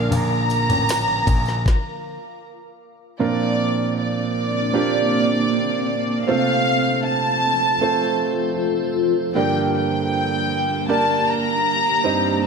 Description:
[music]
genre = pop ballad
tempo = 78 BPM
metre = 4/4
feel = straight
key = Bb major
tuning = A4 = 440 Hz
[part]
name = dark studio violin section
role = melody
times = 0.0-12.4 s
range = D5 to Bb5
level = -22 LUFS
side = equal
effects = none
[part]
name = felt-muted upright piano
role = accompaniment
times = 0.0-12.5 s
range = G2 to Eb5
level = -22 LUFS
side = right 4 dB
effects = none
[part]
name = granular cloud pad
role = sustained chords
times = 0.0-12.5 s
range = C3 to D6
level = -26 LUFS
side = left 1 dB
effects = built-in reverb
[part]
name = picked steel-string acoustic guitar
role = arpeggios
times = 0.0-2.2 s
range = D3 to Bb4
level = -31 LUFS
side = left 7 dB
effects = none
[part]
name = warm baby grand piano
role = bass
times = 0.0-1.6 s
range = A1 to Bb1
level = -23 LUFS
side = left 1 dB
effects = none
[part]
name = smooth R&B drum kit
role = drums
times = 0.1-1.8 s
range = kick drum, ride cymbal, snare drum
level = -22 LUFS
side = left 1 dB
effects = none
[part]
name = tambourine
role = percussion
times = 0.1-1.6 s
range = none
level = -38 LUFS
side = right 4 dB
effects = none
[sound]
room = light reverb, small room reverb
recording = dark, warm production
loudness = -18 LUFS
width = side -5 dB against mid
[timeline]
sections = 0.0-3.2 A section; 3.2-12.5 A section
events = stop 1.7-3.2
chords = 0.0 Bb; 3.2 Bbadd9; 6.3 F; 9.3 Gm

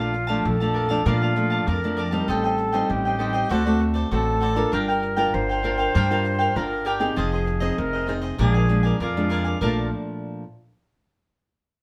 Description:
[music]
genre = samba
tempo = 98 BPM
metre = 4/4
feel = straight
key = Bb major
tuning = A4 = 441 Hz
[part]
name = reedy silver concert flute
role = second line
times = 0.0-9.9 s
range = F4 to C5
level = -29 LUFS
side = equal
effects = none
[part]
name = cavaquinho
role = accompaniment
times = 0.0-9.9 s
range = D4 to A5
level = -30 LUFS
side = equal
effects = none
[part]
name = nylon-string guitar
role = accompaniment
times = 0.0-10.4 s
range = F2 to Bb4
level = -28 LUFS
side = equal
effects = none
[part]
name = upright bass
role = bass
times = 0.0-9.9 s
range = F1 to Bb2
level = -28 LUFS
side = equal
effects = none
[sound]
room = moderate studio reverb, RT60 0.7 s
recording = band playing live in one room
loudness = -23 LUFS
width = mono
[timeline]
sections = 0.0-9.6 A section; 9.6-11.8 B section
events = none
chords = 0.0 Bbmaj7; 2.3 Am7b5; 3.5 D7; 4.7 Gm7; 7.2 Fm7; 8.4 Bb7; 9.6 Bbmaj7

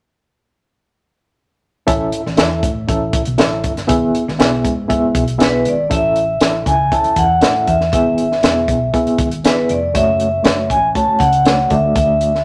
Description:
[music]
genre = uptempo 1960s-style soul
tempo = 119 BPM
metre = 4/4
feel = straight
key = A major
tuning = A4 = 440 Hz
[part]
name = reed electric piano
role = accompaniment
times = 1.9-12.3 s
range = A3 to E5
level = -21 LUFS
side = equal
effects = overdrive, fast tremolo
[part]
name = hollow-body short-scale fingered electric bass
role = bass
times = 1.9-12.4 s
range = E1 to A2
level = -25 LUFS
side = equal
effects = none
[part]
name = compact cocktail drum kit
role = drums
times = 1.9-12.4 s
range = hi-hat, kick drum, snare drum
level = -20 LUFS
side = equal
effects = none
[part]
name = vibraphone with medium hard mallets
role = melody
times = 5.4-12.4 s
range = B4 to A5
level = -18 LUFS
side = equal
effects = none
[sound]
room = wet club reverb, RT60 0.9 s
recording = none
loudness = -15 LUFS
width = mono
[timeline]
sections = 1.9-5.9 A section; 5.9-12.4 B section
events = none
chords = 1.9 A; 3.9 E/G#; 5.9 A; 7.9 E; 9.9 F#m; 11.7 D

